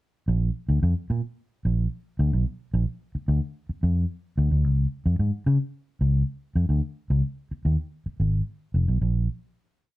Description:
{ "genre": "funk", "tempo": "110 BPM", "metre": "4/4", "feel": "straight", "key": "Bb mixolydian", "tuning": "A4 = 440 Hz", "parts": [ { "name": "vintage muted fingered electric bass", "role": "solo", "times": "0.3-9.3 s", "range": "F1 to Db3", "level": "-22 LUFS", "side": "equal", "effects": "none" } ], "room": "light reverb", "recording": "dark, warm production", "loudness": "-23 LUFS", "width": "side -17 dB against mid", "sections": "0.3-9.0 A section; 9.0-10.0 final chord", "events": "none", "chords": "none", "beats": "| 0.27 0.82 1.37 1.92 | 2.46 3.01 3.56 4.10 | 4.65 5.19 5.74 6.28 | 6.83 7.37 7.92 8.47 | 9.01" }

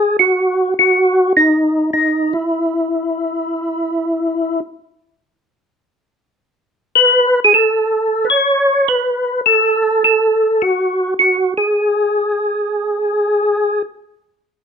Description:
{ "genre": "jazz", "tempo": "104 BPM", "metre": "4/4", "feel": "swing 67% on 8ths", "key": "unclear", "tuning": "A4 = 441 Hz", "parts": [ { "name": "percussive tonewheel organ", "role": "solo", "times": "0.0-13.8 s", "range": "D#4 to C#5", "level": "-13 LUFS", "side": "equal", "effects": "slow rotary speaker, chorus vibrato" } ], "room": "light reverb", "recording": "minimal, uncompressed stereo recording", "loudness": "-13 LUFS", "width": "side -6 dB against mid", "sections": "0.0-14.6 A section", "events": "none", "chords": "none", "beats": "| 0.21 0.79 1.37 1.94 | 2.52 3.10 3.68 4.25 | 4.83 5.41 5.99 6.56 | 7.14 7.71 8.29 8.87 | 9.44 10.02 10.59 11.17 | 11.74 12.32 12.89 13.47" }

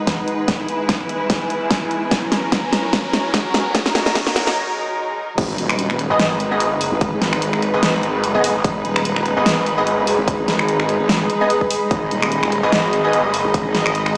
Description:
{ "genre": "heavy wobble dubstep", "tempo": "147 BPM", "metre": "4/4", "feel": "swing 55% on 16ths, half-time", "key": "G# minor", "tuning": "A4 = 440 Hz", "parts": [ { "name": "rich studio string section", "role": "sustained chords", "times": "0.0-14.2 s", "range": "F#3 to D#5", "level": "-26 LUFS", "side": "equal", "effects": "sidechain pumping" }, { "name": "riser, swell and impact", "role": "sound effects", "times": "0.6-7.0 s", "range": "none", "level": "-34 LUFS", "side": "equal", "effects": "none" }, { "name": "granular cloud pad", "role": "texture", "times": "0.0-14.2 s", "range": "D#4 to B5", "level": "-27 LUFS", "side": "equal", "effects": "built-in reverb, sidechain pumping" }, { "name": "big-room dance drum kit", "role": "drums", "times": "0.1-14.1 s", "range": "crash cymbal, finger snaps, hi-hat, snare drum", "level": "-23 LUFS", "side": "equal", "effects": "none" }, { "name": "electronic kick drum", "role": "drums", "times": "0.1-13.6 s", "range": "none", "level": "-25 LUFS", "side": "equal", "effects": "none" }, { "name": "wobble bass", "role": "bass", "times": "5.4-14.2 s", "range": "D#1 to G#1", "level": "-24 LUFS", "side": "equal", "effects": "chorus, overdrive" }, { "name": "orchestra-hit-like synth stab", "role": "stabs", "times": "6.1-13.2 s", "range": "B3 to D#5", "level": "-24 LUFS", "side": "equal", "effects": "built-in reverb, phaser, tape echo" }, { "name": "snarling distorted saw bass", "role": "bass", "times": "6.1-10.2, 12.6-13.4 s", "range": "G#1", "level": "-24 LUFS", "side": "equal", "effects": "distortion, overdrive" } ], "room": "moderate plate reverb, RT60 2.1 s", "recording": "played on a big sound system in a bare room, stone room reverb, high-pass filter, small speaker sound", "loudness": "-19 LUFS", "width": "mono", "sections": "0.0-5.4 A section; 5.4-14.2 B section", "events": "build-up 0.0-5.4; drum fill 0.0-4.6; riser 0.6-4.6; break 4.6-5.4; swell 4.6-5.4; drop 5.4-14.2; impact 5.4-7.0", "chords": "0.5 E; 2.1 F#; 3.7 D#m; 5.4 G#m", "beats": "0.07 | 0.48 0.89 1.30 1.71 | 2.11 2.52 2.93 3.34 | 3.75 4.15 4.56 4.97 | 5.38 5.79 6.20 6.60 | 7.01 7.42 7.83 8.24 | 8.64 9.05 9.46 9.87 | 10.28 10.69 11.09 11.50 | 11.91 12.32 12.73 13.13 | 13.54 13.95" }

